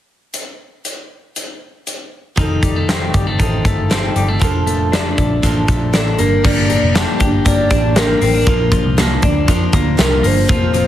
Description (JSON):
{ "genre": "jangly indie pop", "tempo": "118 BPM", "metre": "4/4", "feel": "straight", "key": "Bb major", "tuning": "A4 = 440 Hz", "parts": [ { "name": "big rock drum kit", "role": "drums", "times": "0.3-10.9 s", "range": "crash cymbal, hi-hat, kick drum, snare drum", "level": "-17 LUFS", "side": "equal", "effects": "none" }, { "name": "picked steel-string acoustic guitar", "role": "accompaniment", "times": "2.4-10.9 s", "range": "Bb2 to A4", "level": "-22 LUFS", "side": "right 7 dB", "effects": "none" }, { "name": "twelve-string electric guitar", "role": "arpeggios", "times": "2.4-10.9 s", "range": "Eb3 to G4", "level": "-20 LUFS", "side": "left 6 dB", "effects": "slapback echo" }, { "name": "vintage muted picked electric bass", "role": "bass", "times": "2.4-10.8 s", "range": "F1 to F2", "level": "-18 LUFS", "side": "equal", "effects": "none" }, { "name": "hollow clarinet-like synth lead", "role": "melody", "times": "5.9-10.9 s", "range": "A4 to D5", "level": "-19 LUFS", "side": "equal", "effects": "chorus, tremolo, slapback echo" } ], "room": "light reverb, studio ambience", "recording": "heavily compressed radio sound", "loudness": "-12 LUFS", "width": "side -12 dB against mid", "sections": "0.3-2.4 A section; 2.4-6.4 B section; 6.4-10.9 C section", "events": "none", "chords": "0.3 N.C.; 2.4 F7; 4.4 Bbmaj7/F; 6.2 Gm; 8.5 Bb" }